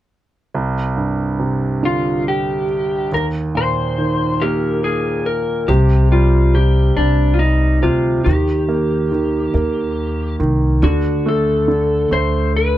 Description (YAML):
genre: pop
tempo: 47 BPM (dotted quarters)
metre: 6/8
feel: straight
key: C minor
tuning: A4 = 439 Hz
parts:
  - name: clear concert grand piano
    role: accompaniment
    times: 0.5-12.8 s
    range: C2 to Bb3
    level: -19 LUFS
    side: right 2 dB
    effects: none
  - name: electric slide guitar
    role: melody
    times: 1.9-12.8 s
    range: D4 to C5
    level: -19 LUFS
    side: left 2 dB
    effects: none
  - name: upright bass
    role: bass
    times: 5.7-12.8 s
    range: C2 to Eb2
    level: -16 LUFS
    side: equal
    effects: none
room: light reverb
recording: dry, close 1970s-style studio recording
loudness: -14 LUFS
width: side -13 dB against mid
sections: 0.5-5.7 A section; 5.7-12.8 B section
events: none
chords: 0.5 Csus2; 3.1 Eb5; 5.7 Csus2; 8.3 Eb; 10.8 D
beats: | 0.55 1.83 | 3.11 4.40 | 5.68 6.97 | 8.25 9.54 | 10.82 12.11